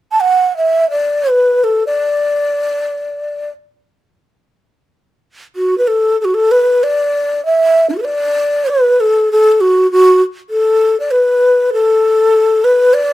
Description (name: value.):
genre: chinese traditional.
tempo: 75-101 BPM.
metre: 4/4.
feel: rubato.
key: D gong mode.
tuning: A4 = 437 Hz.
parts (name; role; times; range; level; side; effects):
breathy mellow xiao; solo; 0.1-13.1 s; D4 to A5; -10 LUFS; equal; none.
room: moderate studio reverb, RT60 0.7 s.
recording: none.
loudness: -11 LUFS.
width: side -15 dB against mid.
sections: 0.0-5.6 A section; 5.6-13.1 B section.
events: none.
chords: none.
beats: 0.25 1.02 1.79 | 2.55 3.31 4.07 4.85 | 5.56 6.19 6.82 7.43 | 8.05 8.67 9.28 9.89 | 10.49 11.09 11.70 12.31 | 12.92.